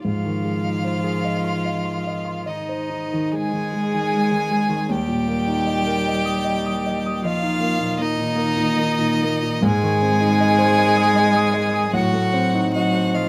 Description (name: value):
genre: classical, slow romantic movement for piano quartet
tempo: 46-54 BPM (dotted quarters)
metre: 12/8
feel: rubato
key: unclear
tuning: A4 = 439 Hz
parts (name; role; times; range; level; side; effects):
- warm violin; melody; 0.0-13.3 s; Eb5 to Ab5; -27 LUFS; equal; none
- dark cello; second line; 0.0-13.3 s; Eb3 to Ab3; -27 LUFS; equal; none
- warm violin; second line; 0.0-13.3 s; Eb4 to Ab4; -28 LUFS; equal; none
- warm concert grand piano; accompaniment; 0.0-13.3 s; Eb2 to Eb6; -25 LUFS; equal; none
room: light reverb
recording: none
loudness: -21 LUFS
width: mono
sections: 0.0-13.3 A section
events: none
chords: 0.0 Ab; 4.9 Eb; 9.6 Ab; 11.9 Adim7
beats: | 0.04 1.25 2.48 3.74 | 4.91 6.09 7.25 8.39 | 9.63 10.79 11.95 13.14